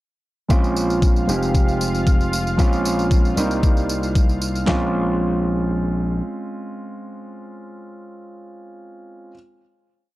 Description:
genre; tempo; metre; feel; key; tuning
nu-disco, nu disco; 115 BPM; 4/4; straight; Bb dorian; A4 = 440 Hz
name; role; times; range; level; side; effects
dark baby grand piano; accompaniment; 0.5-9.3 s; G3 to G4; -24 LUFS; right 1 dB; analog delay
lush unison pad; sustained chords; 0.5-4.7 s; F4 to F5; -29 LUFS; equal; chorus, sidechain pumping
gritty slap bass; bass; 0.5-6.2 s; F1 to C2; -23 LUFS; equal; overdrive
pop drum kit; drums; 0.5-4.8 s; kick drum, snare drum, toms; -17 LUFS; equal; none
tambourine; drums; 0.5-4.7 s; none; -31 LUFS; right 1 dB; none
room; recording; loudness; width
little or no reverb; dry, gritty hardware recording; -17 LUFS; side -17 dB against mid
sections
0.5-4.7 breakdown; 4.7-8.8 final chord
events
filter sweep on analog synth pad 0.5-4.7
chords
0.5 Bbm9; 1.3 Fm9; 2.6 Bbm9; 3.4 Cm7; 4.7 Bbm9

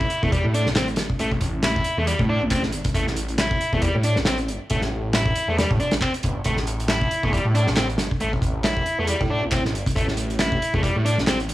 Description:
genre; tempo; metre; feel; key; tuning
breakbeat, breaks; 137 BPM; 4/4; swing 57% on 16ths; A minor; A4 = 439 Hz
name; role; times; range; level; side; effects
overdriven electric guitar; riff; 0.0-11.4 s; G3 to E4; -25 LUFS; left 1 dB; tape echo
phased detuned saw bass; bass; 0.0-11.5 s; E1 to A2; -24 LUFS; equal; phaser
loose indie drum kit; drums; 0.0-11.5 s; hi-hat, kick drum, snare drum; -24 LUFS; equal; none
electronic handclaps; drums; 0.8-11.4 s; none; -30 LUFS; equal; none
room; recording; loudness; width
studio reverb; small room ambience; -20 LUFS; side -16 dB against mid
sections
0.0-11.5 A section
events
none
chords
0.0 A7(no3)

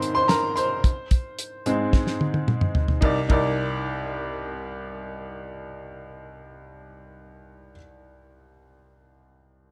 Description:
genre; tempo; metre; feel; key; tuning
piano-driven pop; 110 BPM; 4/4; straight; C minor; A4 = 440 Hz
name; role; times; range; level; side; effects
bright upright piano; accompaniment; 0.0-9.7 s; C2 to C6; -28 LUFS; equal; none
damped 70s drum kit; drums; 0.0-3.5 s; hi-hat, kick drum, ride cymbal, snare drum, toms; -24 LUFS; equal; none
room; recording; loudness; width
light reverb, studio ambience; dark, warm production; -24 LUFS; mono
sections
0.0-3.0 A section; 3.0-7.4 B section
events
upright piano solo 0.0-3.0; drum fill 1.9-3.0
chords
0.0 Ab; 3.0 Cm9

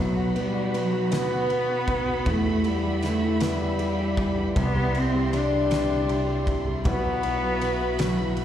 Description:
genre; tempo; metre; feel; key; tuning
six-eight pop ballad; 52 BPM (dotted quarters); 6/8; straight; unclear; A4 = 440 Hz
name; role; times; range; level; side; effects
warm cello; melody; 0.0-8.4 s; F#3 to D4; -26 LUFS; equal; slapback echo
dark French horn section; second line; 0.0-8.4 s; E4 to G4; -33 LUFS; equal; slapback echo
warm upright piano; accompaniment; 0.0-8.4 s; B2 to F#4; -31 LUFS; left 2 dB; slapback echo
warm studio string section; sustained chords; 0.0-8.4 s; D#4 to C6; -34 LUFS; right 1 dB; none
bell-like tine electric piano; bass; 0.0-8.4 s; B1 to B2; -30 LUFS; equal; none
loose indie drum kit; drums; 0.4-8.4 s; kick drum, ride cymbal, snare drum; -31 LUFS; equal; none
fingerpicked steel-string acoustic guitar; arpeggios; 4.6-8.4 s; B2 to F#4; -35 LUFS; left 5 dB; none
room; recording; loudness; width
light reverb; live gig heard through the venue's PA, recital hall reverb; -22 LUFS; side -10 dB against mid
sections
0.0-8.4 A section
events
none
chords
0.0 B; 2.3 Emadd9; 4.6 Cadd9; 6.8 Bsus4

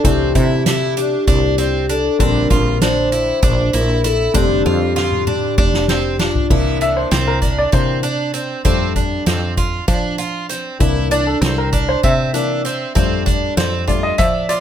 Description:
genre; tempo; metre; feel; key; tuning
progressive instrumental, band music in an uneven meter; 195 BPM (eighths); 7/8; straight; C mixolydian; A4 = 440 Hz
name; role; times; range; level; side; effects
warm concert grand piano; accompaniment; 0.0-14.6 s; D3 to E5; -22 LUFS; left 4 dB; none
picked twelve-string acoustic guitar; arpeggios; 0.0-14.6 s; C4 to F4; -21 LUFS; right 4 dB; none
woody fretless electric bass; bass; 0.0-14.6 s; F1 to F3; -20 LUFS; equal; none
soft-mallet drum kit; drums; 0.0-14.6 s; crash cymbal, hi-hat, kick drum, snare drum, toms; -19 LUFS; equal; none
vibraphone with soft mallets; second line; 0.1-6.5 s; F4 to C5; -20 LUFS; left 4 dB; auto-pan
room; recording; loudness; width
light reverb; none; -14 LUFS; side -9 dB against mid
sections
0.0-6.5 A section; 6.5-14.6 B section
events
drum fill 4.7-6.5; grand piano solo 6.5-14.6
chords
0.1 C; 2.2 Bb; 4.4 F5; 6.5 C7; 8.7 F6; 10.8 C7; 13.0 F6

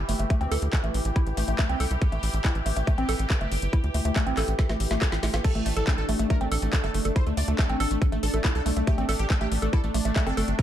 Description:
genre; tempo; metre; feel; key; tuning
psychedelic trance; 140 BPM; 4/4; straight; A minor; A4 = 440 Hz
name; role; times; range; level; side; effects
bubbling stepped-filter texture; sustained chords; 0.0-10.6 s; E3 to G4; -33 LUFS; equal; chorus, built-in reverb, sidechain pumping
tight sequencer bass; bass; 0.0-10.5 s; G1 to D2; -27 LUFS; equal; none
woody wave-folded pluck; riff; 0.1-10.4 s; A3 to A4; -31 LUFS; moving between left 3 dB and right 4 dB; chorus, auto-pan, sidechain pumping, digital delay
garage drum kit; drums; 0.1-10.6 s; crash cymbal, handclaps, hi-hat, snare drum; -32 LUFS; left 1 dB; none
electronic kick drum; drums; 0.3-10.6 s; none; -23 LUFS; equal; none
supersaw stab; melody; 5.4-10.6 s; A3 to D5; -32 LUFS; equal; phaser, sidechain pumping, ping-pong delay
room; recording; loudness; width
little or no reverb; dark, warm production; -23 LUFS; side -11 dB against mid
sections
0.0-10.6 A section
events
drum fill 4.6-5.4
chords
0.0 A5

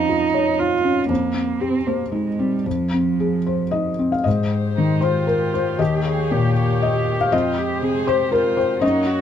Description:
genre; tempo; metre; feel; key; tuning
neoclassical piano and strings; 111-121 BPM; 3/4; rubato; F minor; A4 = 443 Hz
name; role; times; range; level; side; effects
dark cello; second line; 0.0-9.2 s; F3 to Ab4; -23 LUFS; right 6 dB; none
felt-muted upright piano; accompaniment; 0.0-9.2 s; Eb2 to F5; -19 LUFS; left 3 dB; none
warm chamber string section; sustained chords; 4.2-9.2 s; Ab3 to Db5; -29 LUFS; left 2 dB; none
room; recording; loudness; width
light reverb; dark, warm production; -18 LUFS; side -9 dB against mid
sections
0.0-4.3 A section; 4.3-9.2 B section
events
none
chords
0.0 Dbadd9/F; 1.1 Cm7/F; 2.7 Fm7; 4.3 Abmaj7; 5.8 Eb7; 7.3 Fmadd9

